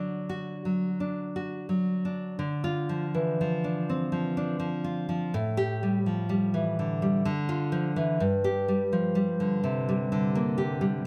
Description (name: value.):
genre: romantic piece for solo classical guitar.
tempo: 62 BPM.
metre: 3/4.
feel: uneven beats, rubato.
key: D minor.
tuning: A4 = 440 Hz.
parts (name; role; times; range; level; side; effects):
nylon-string guitar; solo; 0.0-11.1 s; G2 to G4; -28 LUFS; equal; none.
room: moderate scoring stage reverb, RT60 1.7 s.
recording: none.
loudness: -28 LUFS.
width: mono.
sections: 0.0-2.4 A section; 2.4-11.1 B section.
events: none.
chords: 0.0 D; 2.4 Dm; 5.3 A5; 7.3 Dm; 8.2 Gm.